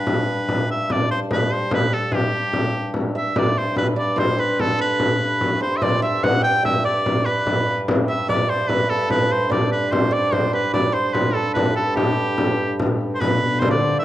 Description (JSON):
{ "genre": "medieval dance", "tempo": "146 BPM", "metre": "3/4", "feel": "straight", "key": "G major", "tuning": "A4 = 440 Hz", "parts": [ { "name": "edgy shawm", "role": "melody", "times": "0.0-14.0 s", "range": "G4 to G5", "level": "-22 LUFS", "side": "equal", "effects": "cassette tape, plate reverb" }, { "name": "hand-pumped harmonium", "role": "drone", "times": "0.0-14.0 s", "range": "G2", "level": "-27 LUFS", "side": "left 1 dB", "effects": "plate reverb" }, { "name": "frame drum", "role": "percussion", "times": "0.1-13.8 s", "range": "none", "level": "-22 LUFS", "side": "left 1 dB", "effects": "none" }, { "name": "hammered dulcimer", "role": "second line", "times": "3.1-14.0 s", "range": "G4 to G5", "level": "-24 LUFS", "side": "right 3 dB", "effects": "plate reverb" }, { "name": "dark viola da gamba", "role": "second line", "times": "13.2-14.0 s", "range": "B2 to D3", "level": "-24 LUFS", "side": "left 2 dB", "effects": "none" } ], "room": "wet studio ambience, RT60 0.5 s", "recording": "home recording on cassette", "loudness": "-18 LUFS", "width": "side -13 dB against mid", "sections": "0.0-3.4 A section; 3.4-13.2 A section", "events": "none", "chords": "none" }